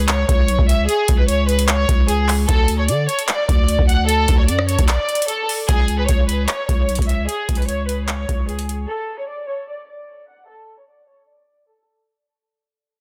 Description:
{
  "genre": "hip hop, trap",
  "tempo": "150 BPM",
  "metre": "4/4",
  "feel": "half-time",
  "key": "unclear",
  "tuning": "A4 = 440 Hz",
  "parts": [
    { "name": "warm studio violin section", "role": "melody", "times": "0.0-11.9 s", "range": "G#4 to F#5", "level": "-24 LUFS", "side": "equal", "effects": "low-pass filter, digital delay" },
    { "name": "growling 808-style bass", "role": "bass", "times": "0.0-8.9 s", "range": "B1 to D3", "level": "-22 LUFS", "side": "equal", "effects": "none" },
    { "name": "booming analog drum machine", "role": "drums", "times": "0.1-8.8 s", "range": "handclaps, hi-hat, kick drum, rim click", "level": "-20 LUFS", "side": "equal", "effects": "none" }
  ],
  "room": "little or no reverb",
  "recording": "dense, heavily limited modern master",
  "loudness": "-18 LUFS",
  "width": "mono",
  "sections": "0.0-5.7 A section; 5.7-12.1 B section",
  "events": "break 4.9-5.7; fade-out 5.7-12.1; filter sweep on violin section 5.7-12.1",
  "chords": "0.0 N.C.; 2.5 D5; 5.7 E6 (rootless); 8.9 N.C."
}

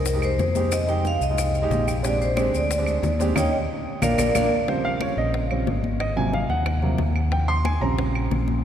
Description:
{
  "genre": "Afro-Cuban jazz",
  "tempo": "182 BPM",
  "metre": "4/4",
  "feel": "straight",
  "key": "unclear",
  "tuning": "A4 = 440 Hz",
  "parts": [
    { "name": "vibraphone with medium hard mallets", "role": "melody", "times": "0.0-4.5 s", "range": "Bb4 to G5", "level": "-26 LUFS", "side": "equal", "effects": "none" },
    { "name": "warm upright piano", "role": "accompaniment", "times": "0.0-8.6 s", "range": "C3 to C6", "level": "-26 LUFS", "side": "right 3 dB", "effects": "none" },
    { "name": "fingered electric bass", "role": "bass", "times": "0.0-8.6 s", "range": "Ab1 to F2", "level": "-25 LUFS", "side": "left 1 dB", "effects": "none" },
    { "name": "bongos", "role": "percussion", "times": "0.1-8.5 s", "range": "none", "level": "-33 LUFS", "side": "left 4 dB", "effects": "none" },
    { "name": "congas", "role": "percussion", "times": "0.1-8.6 s", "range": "none", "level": "-33 LUFS", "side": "left 4 dB", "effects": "none" },
    { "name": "maracas", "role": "percussion", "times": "0.1-4.4 s", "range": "none", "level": "-37 LUFS", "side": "left 8 dB", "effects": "none" },
    { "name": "claves", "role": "percussion", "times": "0.2-8.3 s", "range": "none", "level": "-35 LUFS", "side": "right 3 dB", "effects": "none" }
  ],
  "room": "wet cathedral reverb, RT60 4.9 s",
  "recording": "recorded in a church or concert hall",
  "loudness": "-20 LUFS",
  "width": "side -9 dB against mid",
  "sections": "0.0-4.7 A section; 4.7-8.6 B section",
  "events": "upright piano fill 1.5-2.0; band accent 3.4-4.7; upright piano solo 4.7-8.6",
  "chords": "0.0 Fm7; 2.0 Bb13; 3.4 Eb7(no3); 4.0 Bb; 4.7 Eb13; 6.0 Ab13; 7.3 Eb13"
}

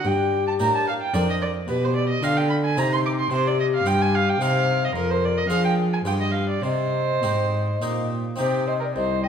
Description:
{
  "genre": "classical, baroque-style sonata movement with continuo",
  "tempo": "110 BPM",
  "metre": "3/4",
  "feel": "rubato",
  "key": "C minor",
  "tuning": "A4 = 441 Hz",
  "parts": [
    { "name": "mellow baroque flute", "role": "melody", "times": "0.0-9.3 s", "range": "D4 to G5", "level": "-26 LUFS", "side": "left 6 dB", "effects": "none" },
    { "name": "dark violin", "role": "second line", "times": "0.0-9.3 s", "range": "G4 to D6", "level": "-24 LUFS", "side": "right 4 dB", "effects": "none" },
    { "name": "harpsichord", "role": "accompaniment", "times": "0.0-9.3 s", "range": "C2 to Bb4", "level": "-29 LUFS", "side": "left 1 dB", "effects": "none" },
    { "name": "dark cello", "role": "bass", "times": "0.0-9.3 s", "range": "C2 to F3", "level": "-25 LUFS", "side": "right 1 dB", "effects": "none" }
  ],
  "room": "wet recital hall reverb, RT60 1.5 s",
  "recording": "none",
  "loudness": "-20 LUFS",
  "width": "side -8 dB against mid",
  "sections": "0.0-8.4 A section",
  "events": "none",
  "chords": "0.0 Gm; 1.7 G7/B; 2.8 Cm; 3.3 G7/C; 4.4 Cm; 5.0 Ddim/F; 6.1 G7; 6.6 Cm"
}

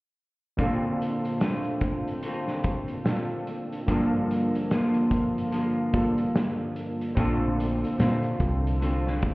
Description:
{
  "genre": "indie pop, bedroom pop",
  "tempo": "73 BPM",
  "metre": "4/4",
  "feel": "swing 60% on 16ths",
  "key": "Bb major",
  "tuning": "A4 = 442 Hz",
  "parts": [
    { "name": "electric guitar through a small old amp", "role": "accompaniment", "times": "0.6-9.3 s", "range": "G2 to F4", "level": "-27 LUFS", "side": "equal", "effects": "analog chorus, warbly pitch drift" },
    { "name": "warm analog keys", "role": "accompaniment", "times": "0.6-9.3 s", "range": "G2 to A4", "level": "-31 LUFS", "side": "right 1 dB", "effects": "chorus, cassette tape" },
    { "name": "loose indie drum kit", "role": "drums", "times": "0.6-9.3 s", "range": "hi-hat, kick drum, snare drum", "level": "-30 LUFS", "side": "equal", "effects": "none" },
    { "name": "vintage muted fingered electric bass", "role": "bass", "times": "7.2-9.3 s", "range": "Bb1 to Bb2", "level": "-26 LUFS", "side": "equal", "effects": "none" }
  ],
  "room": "light reverb, small room ambience",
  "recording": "heard muffled through a wall, stone room reverb, EQ",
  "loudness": "-24 LUFS",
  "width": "side -22 dB against mid",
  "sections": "0.6-9.3 A section",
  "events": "none",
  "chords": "0.6 Bbmaj9; 3.9 Gm7; 7.2 Bbmaj9"
}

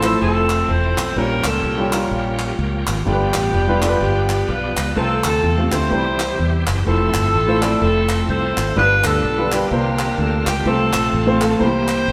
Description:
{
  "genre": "uptempo gospel",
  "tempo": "126 BPM",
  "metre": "4/4",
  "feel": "swing 60% on 8ths",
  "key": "F major",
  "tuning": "A4 = 440 Hz",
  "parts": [
    { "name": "warm saxophone section", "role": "melody", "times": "0.0-12.1 s", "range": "Bb3 to C5", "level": "-23 LUFS", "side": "equal", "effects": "none" },
    { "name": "warm baby grand piano", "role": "accompaniment", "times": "0.0-12.1 s", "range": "G2 to D5", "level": "-23 LUFS", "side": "equal", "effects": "none" },
    { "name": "bright tonewheel organ", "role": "sustained chords", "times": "0.0-12.1 s", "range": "D3 to A4", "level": "-29 LUFS", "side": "equal", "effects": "slow rotary speaker, chorus vibrato" },
    { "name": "fingered electric bass", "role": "bass", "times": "0.0-12.1 s", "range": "E1 to E2", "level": "-24 LUFS", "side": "equal", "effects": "none" },
    { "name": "group handclap", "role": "percussion", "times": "0.0-12.0 s", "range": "none", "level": "-30 LUFS", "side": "equal", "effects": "none" }
  ],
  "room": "wet stone room reverb, RT60 1.4 s",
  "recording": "band playing live in one room",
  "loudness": "-18 LUFS",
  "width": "mono",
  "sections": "0.0-12.1 A section",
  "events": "none",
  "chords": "0.0 Fmaj7; 1.2 Bbm6; 3.1 G7; 5.0 F/C; 5.9 C; 6.9 Fmaj7; 8.8 G7; 9.7 C9sus4; 10.7 F; 11.6 C7"
}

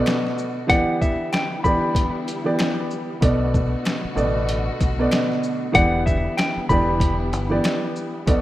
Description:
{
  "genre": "hip hop, boom-bap hip-hop",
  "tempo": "95 BPM",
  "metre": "4/4",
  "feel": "swing 61% on 16ths",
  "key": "unclear",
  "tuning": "A4 = 441 Hz",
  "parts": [
    { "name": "dark baby grand piano", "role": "accompaniment", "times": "0.0-8.4 s", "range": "B2 to D5", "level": "-22 LUFS", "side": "right 1 dB", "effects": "cassette tape, high-pass filter, low-pass filter" },
    { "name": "warm studio string section", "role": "sustained chords", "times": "0.0-8.4 s", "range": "D3 to F#4", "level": "-32 LUFS", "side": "left 2 dB", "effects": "high-pass filter, low-pass filter" },
    { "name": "trip hop sampler-style drum kit", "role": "drums", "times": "0.1-8.4 s", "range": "hi-hat, kick drum, shaker, snare drum", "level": "-23 LUFS", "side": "equal", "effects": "overdrive" },
    { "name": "finger snaps", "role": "percussion", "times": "0.1-7.8 s", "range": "none", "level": "-40 LUFS", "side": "left 4 dB", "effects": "none" },
    { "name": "clean electric guitar", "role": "melody", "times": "0.7-7.2 s", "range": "E5 to B5", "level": "-22 LUFS", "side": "left 1 dB", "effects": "high-pass filter, low-pass filter" },
    { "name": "deep dub fingered electric bass", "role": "bass", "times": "3.2-8.4 s", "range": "E1 to B1", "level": "-24 LUFS", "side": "equal", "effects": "none" }
  ],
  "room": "light reverb",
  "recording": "rough home demo mix",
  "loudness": "-19 LUFS",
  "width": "side -15 dB against mid",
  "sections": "0.0-8.4 A section",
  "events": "break 0.0-0.7",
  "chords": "0.0 Bm7; 0.7 Em7; 3.2 Bm7; 5.7 Em7"
}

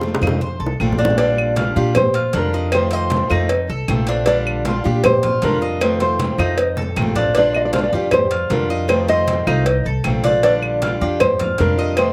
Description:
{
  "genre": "latin, Cuban son and guajira",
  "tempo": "156 BPM",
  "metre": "4/4",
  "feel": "straight",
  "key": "Bb major",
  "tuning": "A4 = 442 Hz",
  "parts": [
    { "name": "picked old ladder-braced acoustic guitar", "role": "accompaniment", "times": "0.0-12.1 s", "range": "C3 to F4", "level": "-26 LUFS", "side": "equal", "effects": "slapback echo" },
    { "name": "Cuban tres", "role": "arpeggios", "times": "0.0-12.1 s", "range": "D4 to Eb5", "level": "-26 LUFS", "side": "equal", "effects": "slapback echo" },
    { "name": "upright bass", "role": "bass", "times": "0.0-12.1 s", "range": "Bb1 to Bb2", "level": "-24 LUFS", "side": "equal", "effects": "none" },
    { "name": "bongos and cowbell", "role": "percussion", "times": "0.0-12.1 s", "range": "none", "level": "-25 LUFS", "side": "equal", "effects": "slapback echo" },
    { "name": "congas", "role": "percussion", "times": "0.0-12.1 s", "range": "none", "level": "-28 LUFS", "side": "equal", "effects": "slapback echo" },
    { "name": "claves", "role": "percussion", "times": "0.2-12.1 s", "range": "none", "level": "-28 LUFS", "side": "equal", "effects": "none" },
    { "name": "nylon-string guitar", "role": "melody", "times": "1.2-12.1 s", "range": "Bb4 to Eb5", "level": "-22 LUFS", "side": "equal", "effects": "slapback echo" }
  ],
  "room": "little or no reverb",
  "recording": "recorded outdoors, with no room sound",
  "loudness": "-18 LUFS",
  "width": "mono",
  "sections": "0.0-1.2 A section; 1.2-12.1 B section",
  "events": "drum fill 0.0-1.2, 6.8-7.4",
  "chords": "0.0 F7; 1.2 Bb6; 2.7 F7; 4.3 Bb6; 5.8 F7; 7.4 Bb6; 8.9 F7; 10.4 Bb6"
}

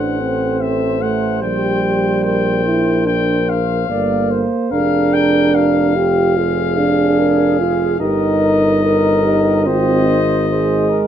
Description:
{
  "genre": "classical, brass quintet",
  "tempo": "73 BPM",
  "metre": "4/4",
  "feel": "straight",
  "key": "unclear",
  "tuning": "A4 = 440 Hz",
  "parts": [
    { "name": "bright trumpet", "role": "melody", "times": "0.0-11.0 s", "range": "Eb5 to G5", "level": "-22 LUFS", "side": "left 9 dB", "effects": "none" },
    { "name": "mellow flugelhorn", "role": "second line", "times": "0.0-11.1 s", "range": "Ab4 to D5", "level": "-23 LUFS", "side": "right 2 dB", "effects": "none" },
    { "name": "mellow French horn", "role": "accompaniment", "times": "0.0-11.0 s", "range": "Eb4 to Bb4", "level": "-22 LUFS", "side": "left 5 dB", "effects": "none" },
    { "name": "mellow euphonium", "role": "accompaniment", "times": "0.0-11.1 s", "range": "G3 to G4", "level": "-17 LUFS", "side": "right 2 dB", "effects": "none" },
    { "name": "warm tuba", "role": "bass", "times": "0.0-11.0 s", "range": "F1 to Bb1", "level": "-20 LUFS", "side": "right 2 dB", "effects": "none" }
  ],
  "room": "light reverb",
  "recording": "minimal, uncompressed stereo recording",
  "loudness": "-13 LUFS",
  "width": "side -9 dB against mid",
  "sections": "0.0-11.1 A section",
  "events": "none",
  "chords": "0.0 F#dim/A; 1.4 Gm/Bb; 4.7 Bb7/F; 8.0 Eb/G; 9.7 Ab"
}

